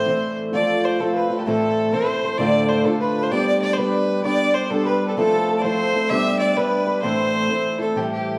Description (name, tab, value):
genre	celtic folk, Celtic polka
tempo	129 BPM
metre	2/4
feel	swing 65% on 8ths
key	A minor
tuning	A4 = 440 Hz
part	rich fiddle	melody	0.0-8.4 s	G4 to E5	-25 LUFS	equal	none
part	hammered dulcimer	second line	0.0-8.4 s	A4 to E5	-32 LUFS	equal	none
part	rich fiddle	second line	0.0-7.8 s	A4 to E5	-31 LUFS	equal	none
part	fingerpicked twelve-string acoustic guitar	accompaniment	0.0-8.4 s	D2 to G4	-24 LUFS	equal	none
room	wet recital hall reverb, RT60 1.4 s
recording	recorded in a church or concert hall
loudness	-20 LUFS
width	mono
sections	0.5-8.0 A section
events	none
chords	0.0 Am; 0.5 F; 1.5 Am; 2.4 Dm; 3.3 G; 5.2 Fmaj7; 6.1 G; 7.0 Am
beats	0.07 | 0.54 1.00 | 1.47 1.93 | 2.39 2.86 | 3.32 3.79 | 4.25 4.71 | 5.18 5.64 | 6.10 6.57 | 7.03 7.50 | 7.96